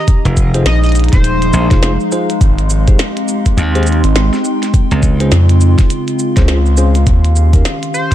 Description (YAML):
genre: glitch hop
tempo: 103 BPM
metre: 4/4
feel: swing 60% on 16ths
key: F minor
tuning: A4 = 440 Hz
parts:
  - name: sync lead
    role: melody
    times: 0.0-1.9, 7.9-8.1 s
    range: C5 to Eb5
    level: -22 LUFS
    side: left 1 dB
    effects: chorus, digital delay
  - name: warbly tape-like pad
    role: sustained chords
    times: 0.0-8.1 s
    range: Db3 to Ab4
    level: -20 LUFS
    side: right 1 dB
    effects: chorus, built-in reverb, sidechain pumping
  - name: warbly tape-like pad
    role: texture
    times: 0.0-8.1 s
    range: Ab3 to C6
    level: -21 LUFS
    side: left 2 dB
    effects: chorus, built-in reverb, phaser, sidechain pumping
  - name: electronic kick drum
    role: drums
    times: 0.1-8.1 s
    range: none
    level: -11 LUFS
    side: equal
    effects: small room reverb
  - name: glitchy drum kit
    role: drums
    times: 0.1-8.1 s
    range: hi-hat, shaker, snare drum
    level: -21 LUFS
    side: equal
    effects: small room reverb
  - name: glassy slap bass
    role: bass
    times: 0.2-5.3 s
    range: F1 to Eb2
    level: -12 LUFS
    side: equal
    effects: tube saturation
  - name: bell-like tine electric piano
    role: stabs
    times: 0.5-7.6 s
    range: Db4 to C5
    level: -23 LUFS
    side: left 1 dB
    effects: sidechain pumping, digital delay
  - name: gritty driven synth bass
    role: bass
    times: 0.7-7.6 s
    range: Eb1 to F2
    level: -11 LUFS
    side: equal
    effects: none
room: little or no reverb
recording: dark, warm production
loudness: -9 LUFS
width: side -12 dB against mid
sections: 0.0-8.1 A section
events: none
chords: 0.1 Fm7; 2.4 Abmaj7; 4.7 Dbmaj7; 7.1 Eb7